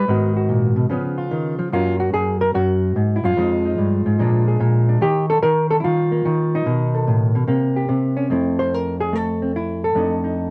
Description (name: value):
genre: solo jazz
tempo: 146 BPM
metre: 4/4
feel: swing 67% on 8ths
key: unclear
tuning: A4 = 445 Hz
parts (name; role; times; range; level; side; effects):
- hollow-body jazz guitar; solo; 0.0-10.5 s; F2 to C5; -19 LUFS; equal; none
room: moderate club reverb, RT60 0.6 s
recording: none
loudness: -19 LUFS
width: mono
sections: 0.0-8.3 A section; 8.3-10.5 B section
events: hollow-body jazz guitar solo 8.3-10.5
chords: 0.1 Abm7; 0.9 Db7; 1.7 Gb; 3.4 Fm7; 4.2 Bb7; 5.0 Eb5; 6.7 B7; 7.5 C5; 8.3 Fmaj7; 9.9 F6